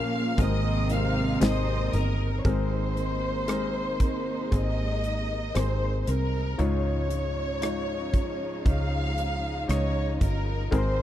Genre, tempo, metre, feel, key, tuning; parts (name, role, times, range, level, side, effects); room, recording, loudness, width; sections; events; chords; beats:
pop ballad; 58 BPM; 4/4; straight; Ab major; A4 = 440 Hz
rich studio violin section; melody; 0.0-11.0 s; Bb4 to F6; -32 LUFS; equal
rich chamber cello section; second line; 0.0-2.4 s; Bb2 to C4; -32 LUFS; right 2 dB
clear baby grand piano; accompaniment; 0.0-11.0 s; Ab2 to Eb5; -34 LUFS; left 4 dB
warm studio string section; sustained chords; 0.0-11.0 s; C3 to F4; -37 LUFS; right 2 dB
fingerpicked steel-string acoustic guitar; arpeggios; 0.0-11.0 s; Bb2 to Bb4; -35 LUFS; left 1 dB
fingered electric bass; bass; 0.0-11.0 s; G1 to Db2; -28 LUFS; equal
modern studio drum kit; drums; 0.4-11.0 s; hi-hat, kick drum, rim click, snare drum; -26 LUFS; equal
tambourine; percussion; 1.4-1.7 s; -45 LUFS; left 12 dB
light reverb; dry, close 1970s-style studio recording; -24 LUFS; side -12 dB against mid
0.0-2.4 A section; 2.4-11.0 B section
0.4 Abadd9; 6.6 Dbadd9
0.38 1.41 | 2.45 3.48 4.52 5.55 | 6.59 7.62 8.65 9.69 | 10.72